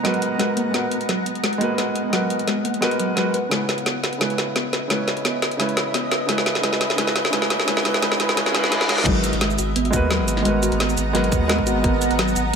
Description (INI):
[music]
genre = liquid drum and bass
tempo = 173 BPM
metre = 4/4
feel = straight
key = G# minor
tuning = A4 = 440 Hz
[part]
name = warm grand piano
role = accompaniment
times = 0.0-12.6 s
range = C#3 to B4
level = -24 LUFS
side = right 1 dB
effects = vintage 12-bit sampler grit, ping-pong delay
[part]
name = shimmering ambient pad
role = sustained chords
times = 0.0-12.6 s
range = B3 to A#5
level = -27 LUFS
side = right 2 dB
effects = chorus, built-in reverb
[part]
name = thumb-piano-like synth pluck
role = arpeggios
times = 0.0-12.6 s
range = F#3 to B4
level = -27 LUFS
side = left 2 dB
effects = chorus, tape echo
[part]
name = saturated sub bass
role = bass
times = 0.0-12.6 s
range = G#1 to D#2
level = -28 LUFS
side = equal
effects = high-pass filter
[part]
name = drum and bass drum kit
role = drums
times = 0.0-12.6 s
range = crash cymbal, hi-hat, shaker, snare drum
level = -23 LUFS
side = equal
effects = none
[part]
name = riser and reverse cymbal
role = sound effects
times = 6.8-9.1 s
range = none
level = -29 LUFS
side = left 1 dB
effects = none
[part]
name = electronic kick drum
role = drums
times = 9.1-11.9 s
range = none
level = -23 LUFS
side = equal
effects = none
[sound]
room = moderate lush hall reverb, RT60 2.0 s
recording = high-pass filter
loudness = -18 LUFS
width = side -6 dB against mid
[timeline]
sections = 0.0-9.1 A section; 9.1-12.6 B section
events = build-up 0.0-9.1; drum fill 0.0-9.1; filter sweep on synth arpeggio sound 0.0-9.1; filter sweep 0.0-9.1; riser 6.8-9.1; reverse cymbal 8.4-9.1; drop 9.1-12.6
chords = 0.0 G#m9; 3.3 C#m7; 9.1 G#m9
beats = 0.05 0.40 | 0.74 1.09 1.44 1.78 | 2.13 2.48 2.82 3.17 | 3.52 3.86 4.21 4.56 | 4.90 5.25 5.60 5.94 | 6.29 6.64 6.99 7.33 | 7.68 8.03 8.37 8.72 | 9.07 9.41 9.76 10.11 | 10.45 10.80 11.15 11.49 | 11.84 12.19 12.53